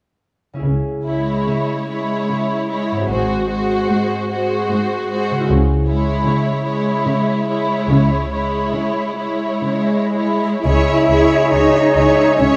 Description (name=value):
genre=classical, slow romantic movement for symphony orchestra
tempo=55-78 BPM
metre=3/4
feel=rubato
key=C# minor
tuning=A4 = 440 Hz
part: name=concert harp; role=arpeggios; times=0.5-12.6 s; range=G#2 to G#4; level=-26 LUFS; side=equal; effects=none
part: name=dark symphonic double bass section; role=bass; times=0.6-12.5 s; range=G#1 to C#2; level=-23 LUFS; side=equal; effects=none
part: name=warm symphonic cello section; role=bass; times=0.6-12.6 s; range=G#2 to E4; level=-21 LUFS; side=equal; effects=none
part: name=warm symphonic violin section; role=melody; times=1.1-12.6 s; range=B#4 to E5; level=-30 LUFS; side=equal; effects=none
part: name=clear symphonic violin section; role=second line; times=1.1-12.6 s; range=E4 to C#5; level=-24 LUFS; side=equal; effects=none
part: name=clear symphonic viola section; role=accompaniment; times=1.1-12.6 s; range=G#3 to G#4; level=-24 LUFS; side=equal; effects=none
part: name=mellow silver concert flute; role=second line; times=10.6-12.6 s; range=C#5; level=-21 LUFS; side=equal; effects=none
part: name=clear bassoon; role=accompaniment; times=10.6-12.6 s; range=G#3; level=-24 LUFS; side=equal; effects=none
room=moderate scoring stage reverb, RT60 1.5 s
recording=dark, warm production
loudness=-17 LUFS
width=mono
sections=0.6-10.6 A section; 10.6-12.6 B section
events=none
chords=0.6 C#m; 3.1 G#7; 5.5 C#m